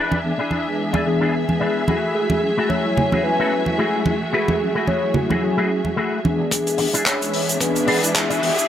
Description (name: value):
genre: nu-disco, nu disco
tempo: 110 BPM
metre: 4/4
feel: swing 56% on 16ths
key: E mixolydian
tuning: A4 = 440 Hz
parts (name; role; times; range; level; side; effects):
- warm symphonic string section; sustained chords; 0.0-8.7 s; A3 to E5; -27 LUFS; equal; sidechain pumping
- electric guitar with an envelope filter; riff; 0.0-8.6 s; A3 to B4; -24 LUFS; left 2 dB; ensemble chorus, low-pass filter, tape echo
- congas; percussion; 0.1-6.4 s; none; -24 LUFS; right 2 dB; none
- mellow synth brass; accompaniment; 0.2-8.5 s; E3 to G#5; -23 LUFS; left 1 dB; chorus, tape echo
- soft octave-layered synth lead; melody; 2.1-8.7 s; F#4 to E5; -24 LUFS; equal; chorus, tape echo
- fat analog bass; bass; 6.5-8.7 s; E1; -41 LUFS; equal; none
- electronic kick drum; drums; 6.5-8.3 s; none; -28 LUFS; equal; high-pass filter on kick, high-pass filter on room
- tight funk drum kit; drums; 6.5-8.7 s; handclaps, hi-hat, shaker; -21 LUFS; left 1 dB; high-pass filter on hats, low-pass filter on hats, high-pass filter on toms, low-pass filter on toms, high-pass filter on snare, low-pass filter on snare, high-pass filter on perc, low-pass filter on perc, high-pass filter on room, low-pass filter on room
- riser; sound effects; 7.1-8.7 s; none; -30 LUFS; equal; none
room: moderate digital room reverb, RT60 1.1 s, studio ambience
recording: none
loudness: -17 LUFS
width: side -10 dB against mid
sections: 0.0-6.5 A section; 6.5-8.7 B section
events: build-up 6.5-8.7; riser 7.1-8.7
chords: 0.0 E7; 1.9 F#m9; 6.5 E7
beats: 0.52 1.06 1.61 | 2.15 2.70 3.24 3.79 | 4.33 4.88 5.43 5.97 | 6.52 7.06 7.61 8.15